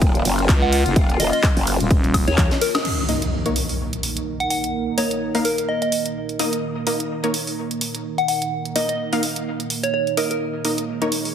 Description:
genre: bass house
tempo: 127 BPM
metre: 4/4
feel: swing 57% on 16ths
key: Eb minor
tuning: A4 = 440 Hz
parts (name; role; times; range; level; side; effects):
- sweeping resonant pad; sustained chords; 0.0-11.3 s; Bb3 to Bb4; -28 LUFS; right 2 dB; chorus, sidechain pumping
- growl bass; bass; 0.0-2.5 s; Eb1 to Eb2; -21 LUFS; equal; chorus, tube saturation, sidechain pumping
- electronic kick drum; drums; 0.0-2.5 s; none; -18 LUFS; equal; overdrive
- house drum kit; drums; 0.0-11.3 s; crash cymbal, handclaps, hi-hat, ride cymbal, snare drum, toms, woodblock; -25 LUFS; right 1 dB; overdrive
- growling FM bass; bass; 0.5-2.3 s; Eb1 to Db2; -20 LUFS; equal; tube saturation, sidechain pumping
- soft synth bell; melody; 0.6-10.4 s; Bb4 to Gb5; -24 LUFS; equal; chorus, phaser, dub echo
- impact; sound effects; 2.9-4.7 s; none; -26 LUFS; equal; none
- orchestra-hit-like synth stab; stabs; 3.1-11.1 s; Bb3 to F5; -25 LUFS; left 1 dB; built-in reverb, sidechain pumping, dub echo
room: light reverb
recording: heavily compressed radio sound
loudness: -18 LUFS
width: side -8 dB against mid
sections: 0.0-2.9 A section; 2.9-11.3 B section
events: drop 0.0-2.9; drum fill 2.4-2.9; band accent 2.7; impact 2.9-4.7; filter sweep on synth stab 2.9-11.3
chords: 0.0 Eb5

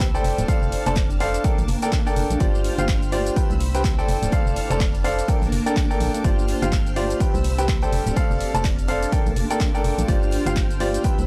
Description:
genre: piano house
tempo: 125 BPM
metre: 4/4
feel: swing 59% on 16ths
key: unclear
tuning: A4 = 437 Hz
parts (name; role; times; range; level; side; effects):
- string machine, violins; sustained chords; 0.0-11.3 s; Bb3 to F6; -35 LUFS; equal; ensemble chorus, sidechain pumping
- organ-like FM bass; bass; 0.0-11.3 s; D1 to C2; -28 LUFS; equal; sidechain pumping
- electronic kick drum; drums; 0.0-11.2 s; none; -25 LUFS; equal; overdrive
- punchy analog drum machine; drums; 0.0-11.3 s; cabasa, handclaps, hi-hat; -36 LUFS; equal; none
- unplugged drum kit; drums; 0.0-11.2 s; hi-hat, snare drum; -46 LUFS; equal; none
- tambourine and congas; percussion; 0.0-11.3 s; none; -38 LUFS; equal; none
- granular cloud pad; texture; 0.1-11.3 s; Bb3 to C6; -35 LUFS; equal; built-in reverb, sidechain pumping
- bright grand piano; riff; 0.1-11.2 s; F4 to A5; -27 LUFS; equal; sidechain pumping, analog delay
room: small room ambience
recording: dry, gritty hardware recording, transformer saturation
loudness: -21 LUFS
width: mono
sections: 0.0-11.3 A section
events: none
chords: 0.2 F6; 1.4 Bbmaj7; 2.4 G7sus4; 3.4 Cmaj7; 4.1 F6; 5.3 Bbmaj7; 6.2 G7sus4; 7.2 Cmaj7; 7.9 F6; 9.1 Bbmaj7; 10.1 G7sus4

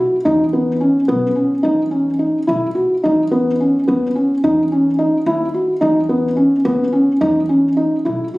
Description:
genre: contemporary instrumental, chamber music in an uneven meter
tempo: 215 BPM (eighths)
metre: 5/8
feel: straight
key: unclear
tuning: A4 = 440 Hz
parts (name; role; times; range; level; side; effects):
- felt-muted upright piano; arpeggios; 0.0-8.4 s; B3 to F#4; -14 LUFS; equal; none
- upright bass; bass; 0.3-8.3 s; B1 to E2; -27 LUFS; equal; none
room: wet recital hall reverb, RT60 1.9 s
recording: recorded on a phone in the room, studio reverb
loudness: -14 LUFS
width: side -20 dB against mid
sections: 0.0-8.4 A section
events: none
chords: 0.0 E5; 3.0 C#m9/D#; 7.2 E5

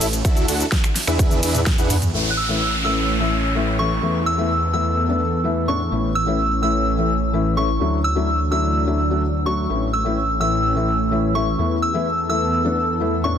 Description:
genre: EDM, festival progressive house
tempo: 127 BPM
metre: 4/4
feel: straight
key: A major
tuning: A4 = 440 Hz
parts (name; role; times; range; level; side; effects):
- dense compressed supersaw; riff; 0.0-2.0 s; D4 to F#5; -25 LUFS; right 1 dB; cassette tape, sidechain pumping, low-pass filter, ping-pong delay
- wide detuned saw bass; bass; 0.0-13.4 s; A1 to E2; -23 LUFS; equal; chorus, sidechain pumping
- big-room dance drum kit; drums; 0.0-2.1 s; finger snaps, hi-hat, ride cymbal, shaker, snare drum, toms; -23 LUFS; right 1 dB; overdrive
- electronic kick drum; drums; 0.2-1.8 s; none; -19 LUFS; equal; overdrive
- felt-muted upright piano; accompaniment; 2.1-13.3 s; A2 to F#4; -23 LUFS; left 4 dB; sidechain pumping
- lush unison pad; sustained chords; 2.7-13.4 s; E3 to A4; -27 LUFS; right 2 dB; chorus, sidechain pumping
- downlifter; sound effects; 2.1-5.9 s; none; -26 LUFS; right 1 dB; none
- soft synth bell; melody; 2.3-13.4 s; C#6 to F#6; -23 LUFS; equal; chorus, ping-pong delay
room: light reverb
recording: dense, heavily limited modern master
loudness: -17 LUFS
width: side -8 dB against mid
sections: 0.0-2.1 A section; 2.1-13.4 B section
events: drop 0.0-2.1; drum fill 1.2-2.1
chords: 0.2 Dadd9; 1.2 E7; 2.1 A; 4.0 Esus4; 5.9 A; 7.8 Dadd9; 9.7 A; 11.6 Esus4

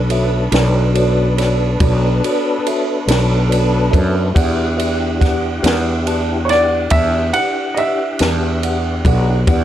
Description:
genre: slow blues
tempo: 47 BPM (dotted quarters)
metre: 12/8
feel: straight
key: unclear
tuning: A4 = 438 Hz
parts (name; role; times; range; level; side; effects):
- warm upright piano; second line; 0.0-9.6 s; C#5 to F#5; -17 LUFS; right 1 dB; none
- tonewheel organ; sustained chords; 0.0-9.6 s; B3 to F#5; -22 LUFS; left 2 dB; slow rotary speaker, chorus vibrato
- fretless electric bass; bass; 0.0-9.6 s; B1 to F#2; -16 LUFS; equal; wide subtle chorus
- mellow tine electric piano; accompaniment; 0.1-9.6 s; F#4 to A5; -21 LUFS; right 2 dB; medium stereo tremolo
- compact cocktail drum kit; drums; 0.1-9.6 s; kick drum, ride cymbal, snare drum; -20 LUFS; equal; none
room: light reverb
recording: dark, warm production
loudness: -13 LUFS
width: side -11 dB against mid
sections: 0.0-9.6 A section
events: upright piano solo 0.0-9.6; tine electric piano fill 3.1-4.4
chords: 0.0 Bm9; 4.4 Em9

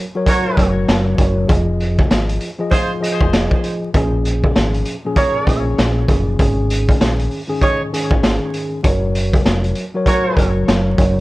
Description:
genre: hip hop, boom-bap hip-hop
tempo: 98 BPM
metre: 4/4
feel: swing 62% on 16ths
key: Bb minor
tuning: A4 = 440 Hz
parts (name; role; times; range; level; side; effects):
- mellow tine electric piano; accompaniment; 0.0-11.2 s; Ab2 to Eb5; -20 LUFS; equal; medium stereo tremolo, cassette tape, high-pass filter, low-pass filter
- mellow horn section; stabs; 0.3-10.5 s; Eb4 to Db5; -21 LUFS; right 2 dB; high-pass filter, low-pass filter, ping-pong delay, plate reverb
- raw garage drum kit; drums; 0.3-11.2 s; hi-hat, kick drum, snare drum; -17 LUFS; equal; none
- deep dub fingered electric bass; bass; 0.6-11.2 s; F1 to Bb1; -19 LUFS; equal; none
room: light reverb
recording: worn, warbling old tape, cassette tape, vinyl crackle, warbly pitch drift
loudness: -14 LUFS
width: side -19 dB against mid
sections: 0.0-11.2 A section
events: none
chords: 0.0 Gb; 1.5 Fm7; 3.9 Bbm7; 6.4 Absus4; 8.8 Gb

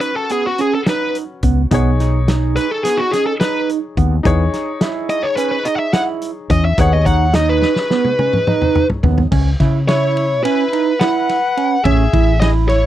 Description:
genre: progressive instrumental, band music in an uneven meter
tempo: 213 BPM (eighths)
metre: 9/8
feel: straight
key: unclear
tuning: A4 = 439 Hz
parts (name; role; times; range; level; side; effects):
- bluesy overdriven lead guitar; melody; 0.0-12.9 s; F#4 to F#5; -17 LUFS; left 1 dB; distortion
- clear grand piano; accompaniment; 0.0-9.3 s; C#4 to C#5; -26 LUFS; left 4 dB; none
- barky tine electric piano; arpeggios; 0.0-12.8 s; B3 to E4; -20 LUFS; right 10 dB; overdrive, phaser
- loose indie drum kit; drums; 0.0-12.8 s; crash cymbal, hi-hat, kick drum, ride cymbal, snare drum, toms; -19 LUFS; left 1 dB; none
- woody fretless electric bass; bass; 1.4-12.9 s; A1 to C#3; -15 LUFS; left 1 dB; analog chorus
- trumpet with plunger mute; second line; 9.9-12.9 s; E4 to B4; -25 LUFS; left 7 dB; none
room: little or no reverb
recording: dry, close 1970s-style studio recording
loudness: -13 LUFS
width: side -12 dB against mid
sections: 0.0-9.3 A section; 9.3-12.9 B section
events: lead electric guitar solo 0.0-9.3; drum fill 7.6-9.3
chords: 0.0 G#m7 (rootless); 1.7 B; 4.3 E; 6.8 B/D#; 9.3 C#m7; 11.9 Amaj7

